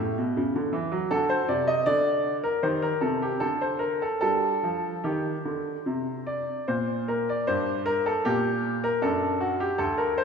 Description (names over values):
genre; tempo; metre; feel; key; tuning
classical, baroque-style suite movement for grand piano; 72-80 BPM; 4/4; rubato; G minor; A4 = 440 Hz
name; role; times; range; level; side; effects
bright baby grand piano; solo; 0.0-10.2 s; D2 to Eb5; -24 LUFS; equal; none
room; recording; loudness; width
wet scoring stage reverb, RT60 2.1 s; recorded in a church or concert hall; -24 LUFS; side -6 dB against mid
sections
0.0-7.5 A section; 7.5-10.2 B section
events
none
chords
0.0 A7; 1.1 D; 2.6 Eb; 3.4 N.C.; 4.2 Gm; 9.0 D/F#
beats
0.36 | 1.11 1.87 2.63 3.42 | 4.22 5.05 5.87 6.68 | 7.48 8.25 9.02 9.79